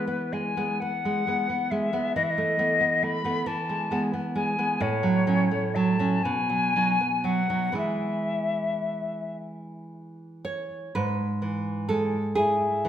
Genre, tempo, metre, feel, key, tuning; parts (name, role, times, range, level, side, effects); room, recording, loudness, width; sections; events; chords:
romantic duo for flute and classical guitar; 37-46 BPM (dotted quarters); 6/8; rubato; E major; A4 = 440 Hz
silver concert flute; melody; 0.0-12.9 s; B4 to B5; -26 LUFS; left 4 dB
nylon-string guitar; accompaniment; 0.0-12.9 s; G#2 to C#5; -26 LUFS; right 2 dB
wet recital hall reverb, RT60 1.4 s; -24 LUFS; side -10 dB against mid
0.0-11.0 A section; 11.0-12.9 B section
0.0 E; 2.1 B7/E; 3.5 E; 4.8 F#m/A; 6.2 B; 7.8 E; 11.0 E/G#